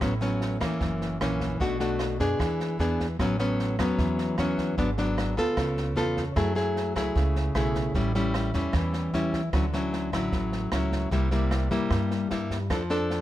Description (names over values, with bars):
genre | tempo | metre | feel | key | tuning
bossa nova | 151 BPM | 4/4 | straight | A major | A4 = 440 Hz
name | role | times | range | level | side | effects
nylon-string guitar | accompaniment | 0.0-13.2 s | F#2 to A4 | -26 LUFS | left 1 dB | none
upright bass | bass | 0.0-13.2 s | F#1 to G2 | -30 LUFS | right 1 dB | none
open jazz drum kit | drums | 0.0-13.2 s | kick drum, rim click, snare drum | -33 LUFS | right 1 dB | none
room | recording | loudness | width
little or no reverb | none | -24 LUFS | side -14 dB against mid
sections
0.0-3.2 A section; 3.2-13.2 B section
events
none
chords
0.0 A69; 0.8 F#7; 1.6 Bm7; 2.4 E7; 3.2 A69; 4.8 G#m7b5; 5.6 C#7alt; 6.4 F#m9; 7.9 A7; 9.5 Dmaj9; 11.1 C7; 12.7 F6